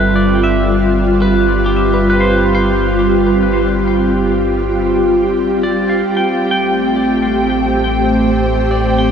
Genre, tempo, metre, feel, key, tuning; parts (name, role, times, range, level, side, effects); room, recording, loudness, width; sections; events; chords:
ambient; 68 BPM; 3/4; straight; A4 = 439 Hz
ethereal airy pad; sustained chords; 0.0-9.1 s; G3 to C5; -13 LUFS; equal; ensemble chorus, built-in reverb
clean electric guitar; arpeggios; 0.0-9.1 s; G4 to G5; -20 LUFS; left 1 dB; phaser, ping-pong delay
round analog bass; bass; 0.0-9.1 s; G1 to A1; -20 LUFS; equal
muted studio violin section; texture; 6.1-9.1 s; G5; -22 LUFS; left 1 dB
wet huge ambient reverb, RT60 8.1 s; dreamy mix soaked in reverb; -11 LUFS; side -7 dB against mid
0.0-9.1 A section
0.0 G9sus4; 6.1 Am7